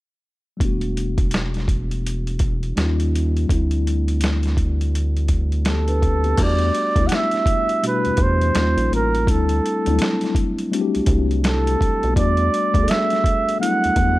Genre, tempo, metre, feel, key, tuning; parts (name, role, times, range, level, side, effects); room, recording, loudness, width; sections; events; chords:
R&B, neo-soul; 83 BPM; 4/4; swing 62% on 16ths; E minor; A4 = 440 Hz
mellow tine electric piano; accompaniment; 0.6-14.2 s; B2 to B4; -24 LUFS; left 3 dB; slow stereo tremolo
rubbery square bass; bass; 0.6-14.2 s; E1 to E2; -20 LUFS; equal
boom bap sampler-style drum kit; drums; 0.6-14.2 s; crash cymbal, hi-hat, kick drum, snare drum; -22 LUFS; equal
breathy flugelhorn; melody; 5.7-14.2 s; A4 to F#5; -21 LUFS; right 2 dB; slapback echo
little or no reverb; dark, warm production; -17 LUFS; side -17 dB against mid
0.6-6.4 A section; 6.4-14.2 B section
0.6 Em11; 2.8 D#9; 3.5 D9sus4; 6.4 Em11; 8.6 D#9; 9.3 D9sus4; 12.2 Em11